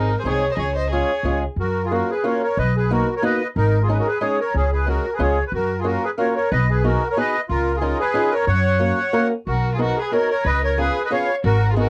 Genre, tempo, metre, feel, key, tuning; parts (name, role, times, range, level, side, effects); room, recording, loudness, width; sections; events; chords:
musette waltz; 183 BPM; 3/4; swing 55% on 8ths; F# major; A4 = 440 Hz
accordion; melody; 0.0-11.9 s; C#4 to F#5; -24 LUFS; equal; light tremolo tuning, cassette tape
rich violin; second line; 0.0-1.4, 9.5-11.9 s; Eb4 to C#5; -30 LUFS; equal; cassette tape
fingerpicked swing-style acoustic guitar; accompaniment; 0.0-11.9 s; Ab3 to A#4; -25 LUFS; equal; cassette tape
upright bass; bass; 0.0-11.9 s; Ab1 to F#2; -23 LUFS; equal
wet booth ambience, RT60 0.2 s; home recording on cassette; -20 LUFS; mono
0.0-1.6 A section; 1.6-11.9 B section
0.0 Ab; 0.6 Db; 1.6 F#maj7; 2.6 Bmaj7; 3.6 G#sus4; 4.5 C#sus4; 5.2 C#; 5.5 F#maj7; 6.5 B6; 7.5 C#add9; 8.5 F#; 9.5 Bmaj7; 10.4 C#7